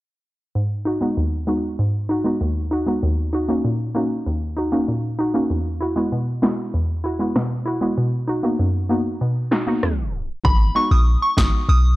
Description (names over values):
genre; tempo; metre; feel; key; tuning
dancehall; 97 BPM; 4/4; straight; G# minor; A4 = 438 Hz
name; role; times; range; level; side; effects
hollow square pluck; accompaniment; 0.6-11.5 s; D#2 to F#4; -20 LUFS; equal; chorus, sidechain pumping
deep house drum kit; drums; 6.4-11.5 s; finger snaps, kick drum, rim click, snare drum; -20 LUFS; equal; none
soft synth bell; melody; 10.4-12.0 s; B5 to D#6; -21 LUFS; equal; chorus
clean 808-style bass; bass; 10.4-12.0 s; G#1 to B1; -16 LUFS; equal; none
room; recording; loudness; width
light reverb, digital ambience; dry, gritty hardware recording, cassette tape, low-pass filter, tape stop; -18 LUFS; side -18 dB against mid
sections
0.6-10.4 A section; 10.4-12.0 B section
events
filter sweep 0.6-10.4; tape stop 9.8-10.4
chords
0.6 G#m7; 3.0 D#m7; 5.5 Eadd9; 8.0 Bmaj7; 10.4 G#m7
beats
| 0.55 1.17 1.79 2.41 | 3.03 3.64 4.26 4.88 | 5.50 6.12 6.74 7.36 | 7.97 8.59 9.21 9.83 | 10.45 11.07 11.69